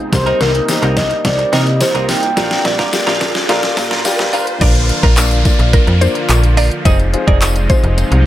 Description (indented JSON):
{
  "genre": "dance-pop",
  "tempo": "107 BPM",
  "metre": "4/4",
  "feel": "straight",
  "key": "Bb major",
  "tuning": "A4 = 441 Hz",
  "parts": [
    { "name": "filtered supersaw swell", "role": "sustained chords", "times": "0.0-8.3 s", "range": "C3 to F4", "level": "-24 LUFS", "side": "right 1 dB", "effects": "sidechain pumping" },
    { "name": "riser and downlifter", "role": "sound effects", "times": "0.0-8.3 s", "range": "none", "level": "-24 LUFS", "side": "right 1 dB", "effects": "none" },
    { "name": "mellow horn-like synth lead", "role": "melody", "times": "0.1-3.5 s", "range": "Bb4 to G5", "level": "-19 LUFS", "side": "equal", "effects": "chorus, dub echo" },
    { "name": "dark concert grand piano", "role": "accompaniment", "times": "0.1-8.3 s", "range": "Bb3 to Bb5", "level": "-21 LUFS", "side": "left 4 dB", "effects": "sidechain pumping, dub echo" },
    { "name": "direct-recorded clean electric guitar", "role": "riff", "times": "0.1-8.2 s", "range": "C4 to Bb4", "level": "-22 LUFS", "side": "right 4 dB", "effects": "wide subtle chorus" },
    { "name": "slap-like FM bass", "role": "bass", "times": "0.1-8.3 s", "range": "F1 to C3", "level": "-15 LUFS", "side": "equal", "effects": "sidechain pumping" },
    { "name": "pop drum kit", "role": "drums", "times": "0.1-8.2 s", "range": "crash cymbal, handclaps, hi-hat, kick drum, snare drum", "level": "-16 LUFS", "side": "equal", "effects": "overdrive" },
    { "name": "tambourine", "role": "percussion", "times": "0.1-8.1 s", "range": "none", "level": "-29 LUFS", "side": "left 4 dB", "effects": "none" },
    { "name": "mallet-like synth pluck", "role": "melody", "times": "4.6-8.1 s", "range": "Bb4 to Eb5", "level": "-22 LUFS", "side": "equal", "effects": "chorus, sidechain pumping, dub echo" }
  ],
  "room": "digital ambience",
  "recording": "echo-heavy mix, high-pass filter",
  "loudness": "-11 LUFS",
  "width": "side -13 dB against mid",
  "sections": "0.0-4.6 A section; 4.6-8.3 B section",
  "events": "build-up 0.0-4.6; drum fill 0.0-4.6; riser 0.0-4.6; filter sweep 0.0-4.6; grand piano fill 3.5-4.6; drop 4.6-8.3",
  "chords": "0.1 Cm7; 2.4 Gm7/Bb; 4.6 Bb; 6.9 Fm7"
}